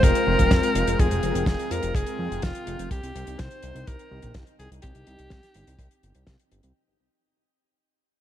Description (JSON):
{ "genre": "italo disco", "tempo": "125 BPM", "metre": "4/4", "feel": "straight", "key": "unclear", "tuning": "A4 = 440 Hz", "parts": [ { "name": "edgy alto saxophone", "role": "melody", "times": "0.0-6.2 s", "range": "F4 to C5", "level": "-27 LUFS", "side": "equal", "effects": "ping-pong delay, shimmer reverb" }, { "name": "string machine, full ensemble", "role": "sustained chords", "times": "0.0-6.7 s", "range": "Ab3 to G5", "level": "-29 LUFS", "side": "left 2 dB", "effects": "phaser, ensemble chorus" }, { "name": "fat analog bass", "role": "bass", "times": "0.0-6.7 s", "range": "Eb1 to F2", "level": "-29 LUFS", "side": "equal", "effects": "tube saturation" }, { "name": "damped 70s drum kit", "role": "drums", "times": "0.0-6.7 s", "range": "hi-hat, snare drum", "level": "-31 LUFS", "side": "left 1 dB", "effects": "small room ambience" }, { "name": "kick drum", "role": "drums", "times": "0.0-6.4 s", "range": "none", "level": "-22 LUFS", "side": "equal", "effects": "small room ambience" } ], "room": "light reverb, small room ambience", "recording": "dark, warm production, vinyl crackle", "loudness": "-21 LUFS", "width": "side -11 dB against mid", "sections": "0.0-6.8 A section", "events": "fade-out 0.0-6.8; filter sweep on string machine 0.0-6.8", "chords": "0.0 Fmadd9; 2.9 Cm" }